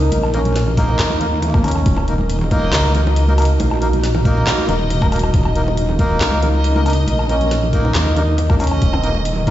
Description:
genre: deep dubstep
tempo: 138 BPM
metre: 4/4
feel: half-time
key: Eb minor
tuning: A4 = 440 Hz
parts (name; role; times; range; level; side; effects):
- warm duduk; melody; 0.0-2.1, 6.9-9.2 s; Bb3 to Eb4; -26 LUFS; equal; dub echo
- deep dark ambient pad; sustained chords; 0.0-9.5 s; Eb4 to Bb4; -25 LUFS; right 1 dB; chorus, built-in reverb
- wobble bass; bass; 0.0-9.5 s; Eb1 to Eb2; -17 LUFS; equal; chorus
- bongos and congas; percussion; 0.0-9.5 s; none; -25 LUFS; right 1 dB; dub echo
- backwards swelling texture; texture; 0.2-9.5 s; Eb5; -27 LUFS; right 1 dB; built-in reverb
- garage drum kit; drums; 0.1-9.5 s; handclaps, hi-hat, snare drum, woodblock; -25 LUFS; left 1 dB; none
- melodica; stabs; 0.3-9.5 s; Bb3 to Bb4; -23 LUFS; equal; dub echo
- electronic kick drum; drums; 0.8-9.5 s; none; -17 LUFS; equal; none
room: light reverb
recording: played on a big sound system in a bare room, stone room reverb, nothing above 7.8 kHz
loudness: -14 LUFS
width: side -13 dB against mid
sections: 0.0-9.5 A section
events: none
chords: 0.0 Eb5

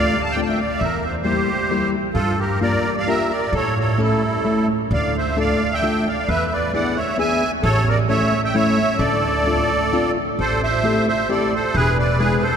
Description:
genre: musette waltz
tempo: 132 BPM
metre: 3/4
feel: rubato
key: D minor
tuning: A4 = 439 Hz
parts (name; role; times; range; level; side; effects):
- musette accordion; melody; 0.0-12.6 s; E4 to A5; -20 LUFS; right 2 dB; none
- fingerpicked plugged-in steel-string acoustic guitar; accompaniment; 0.0-12.4 s; G3 to A4; -22 LUFS; left 2 dB; none
- upright bass; bass; 0.0-12.3 s; E1 to A2; -24 LUFS; equal; none
room: wet cathedral reverb, RT60 6.2 s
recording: recorded in a church or concert hall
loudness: -17 LUFS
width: side -7 dB against mid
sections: 0.0-10.4 A section; 10.4-12.6 B section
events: none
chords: 0.0 Dm7; 0.8 Edim; 2.2 Gm7; 3.5 A; 4.9 Dm; 6.3 E7; 7.6 A; 9.0 Dm7; 10.4 Am7; 11.7 E7

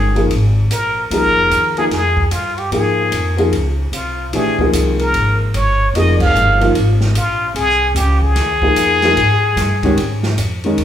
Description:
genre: modal jazz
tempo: 149 BPM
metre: 4/4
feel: swing 64% on 8ths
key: unclear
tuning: A4 = 440 Hz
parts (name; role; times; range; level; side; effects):
- trumpet with plunger mute; melody; 0.0-10.4 s; F4 to F5; -16 LUFS; left 1 dB; none
- warm baby grand piano; accompaniment; 0.0-10.8 s; Eb3 to G5; -18 LUFS; left 1 dB; none
- upright bass; bass; 0.0-10.8 s; F1 to Ab2; -17 LUFS; equal; none
- open jazz drum kit; drums; 0.2-10.8 s; crash cymbal, hi-hat, kick drum, ride cymbal, snare drum; -24 LUFS; right 1 dB; none
room: moderate large studio reverb, RT60 1.2 s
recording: band playing live in one room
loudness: -13 LUFS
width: side -10 dB against mid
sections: 0.0-10.8 A section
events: band accent 6.1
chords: 0.0 Bb7(no3); 1.1 Fm; 4.3 Bb7sus2; 7.6 Fm

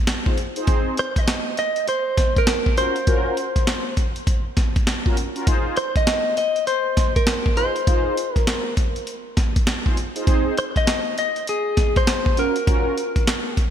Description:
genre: R&B, new jack swing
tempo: 100 BPM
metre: 4/4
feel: swing 62% on 16ths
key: F phrygian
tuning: A4 = 442 Hz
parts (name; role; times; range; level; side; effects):
- breakbeat sampler-style drum kit; drums; 0.1-13.7 s; handclaps, hi-hat, kick drum, snare drum; -20 LUFS; equal; gated reverb
- mellow synth brass; stabs; 0.3-13.0 s; C4 to C5; -27 LUFS; right 1 dB; chorus, phaser
- direct-recorded clean electric guitar; melody; 1.0-13.5 s; Ab4 to Eb5; -23 LUFS; left 1 dB; wide subtle chorus, ping-pong delay
room: light reverb, digital ambience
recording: bright 1980s-style digital production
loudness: -18 LUFS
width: side -9 dB against mid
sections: 0.0-13.7 A section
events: none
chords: 0.0 Fm7; 0.7 Ab; 2.8 Gbmaj7; 5.5 Fm7; 10.3 Ab; 12.4 Gbmaj7

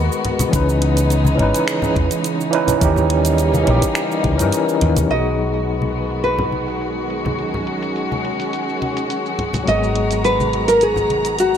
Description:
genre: sunset chillout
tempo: 105 BPM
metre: 4/4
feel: straight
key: unclear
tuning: A4 = 443 Hz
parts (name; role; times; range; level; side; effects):
- overdriven tine electric piano; accompaniment; 0.0-11.6 s; E3 to B4; -21 LUFS; moving between left 6 dB and right 6 dB; fast tremolo, auto-pan, tape echo
- rich studio string section; sustained chords; 0.0-11.6 s; C#3 to A#5; -23 LUFS; left 1 dB; none
- woody fretless electric bass; bass; 0.0-11.6 s; G#1 to G2; -20 LUFS; equal; lush chorus
- smooth R&B drum kit; drums; 0.1-11.6 s; cabasa, finger snaps, hi-hat; -27 LUFS; right 3 dB; low-pass filter on hats, small room ambience, low-pass filter on perc, low-pass filter on snare
- congas; percussion; 0.3-11.2 s; none; -25 LUFS; left 1 dB; none
- electronic kick drum; drums; 0.5-4.4 s; none; -21 LUFS; equal; small room ambience
- nylon-string guitar; melody; 5.1-11.6 s; F#4 to D#5; -18 LUFS; equal; tape echo
room: moderate concert hall reverb, RT60 2.0 s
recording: none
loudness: -16 LUFS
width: side -8 dB against mid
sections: 0.0-5.1 A section; 5.1-11.6 B section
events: filter sweep on tine electric piano 0.0-5.1; filter sweep on drum 5.1-11.6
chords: 0.0 G#m9; 0.5 C#m9; 2.8 D#7b9; 5.1 B6; 9.7 G#m9

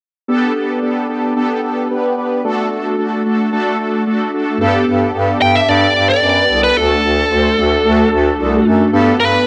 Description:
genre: synth-pop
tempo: 111 BPM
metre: 4/4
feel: straight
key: G major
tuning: A4 = 439 Hz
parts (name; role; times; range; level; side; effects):
- mellow synth brass; accompaniment; 0.3-9.4 s; A3 to C5; -17 LUFS; equal; chorus, phaser
- clear bass clarinet; bass; 4.6-9.4 s; C2 to G2; -19 LUFS; equal; none
- smooth overdriven lead guitar; melody; 5.4-9.5 s; A4 to G5; -16 LUFS; equal; none
room: moderate lush hall reverb, RT60 2.6 s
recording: nothing above 10.6 kHz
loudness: -15 LUFS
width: mono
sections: 0.3-4.6 A section; 4.6-9.5 B section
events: none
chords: 0.3 Gadd9; 2.4 D; 4.6 Gadd9; 6.8 D; 8.9 Gadd9

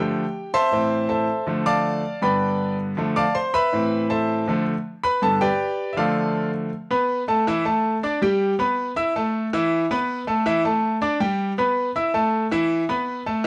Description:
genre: latin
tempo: 160 BPM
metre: 4/4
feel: straight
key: A minor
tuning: A4 = 440 Hz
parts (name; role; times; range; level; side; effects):
- bright grand piano; solo; 0.0-13.5 s; G2 to E6; -22 LUFS; equal; none
room: moderate studio reverb, RT60 0.7 s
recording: dark, warm production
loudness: -22 LUFS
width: mono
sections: 0.0-6.7 A section; 6.7-13.5 B section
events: grand piano solo 0.0-6.7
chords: 0.0 Dmadd9; 0.7 Am; 1.5 Dmadd9; 2.2 G; 3.0 Dmadd9; 3.7 Amadd9; 4.5 Dmadd9; 5.2 G; 6.0 Dm; 6.7 Asus2; 7.5 Dsus2; 8.2 G; 9.0 Esus4; 9.7 Asus2; 10.5 Dsus2; 11.2 G; 12.0 Esus4; 12.7 Asus2

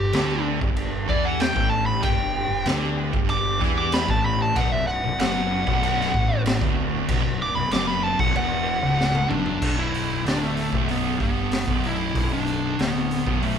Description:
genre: stoner and doom metal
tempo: 95 BPM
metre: 4/4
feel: straight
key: B minor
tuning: A4 = 440 Hz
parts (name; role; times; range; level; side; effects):
- fuzz lead guitar; melody; 0.0-13.6 s; A3 to D6; -25 LUFS; equal; distortion
- ensemble organ-string; sustained chords; 0.0-9.6 s; G3 to A4; -36 LUFS; left 1 dB; ensemble chorus
- thick fuzz guitar; riff; 0.0-13.6 s; B1 to E3; -27 LUFS; left 8 dB; distortion
- thick fuzz guitar; riff; 0.0-13.6 s; B1 to E3; -28 LUFS; right 8 dB; distortion
- fuzz fingered electric bass; bass; 0.0-13.6 s; B0 to E2; -31 LUFS; equal; overdrive
- raw garage drum kit; drums; 0.1-13.6 s; crash cymbal, hi-hat, kick drum, snare drum, toms; -26 LUFS; equal; none
room: moderate large studio reverb, RT60 0.9 s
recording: band playing live in one room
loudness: -20 LUFS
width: side -7 dB against mid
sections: 0.0-9.6 A section; 9.6-13.6 B section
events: lead electric guitar solo 0.0-9.6; drum fill 9.0-9.6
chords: 0.0 G5; 4.6 Bm

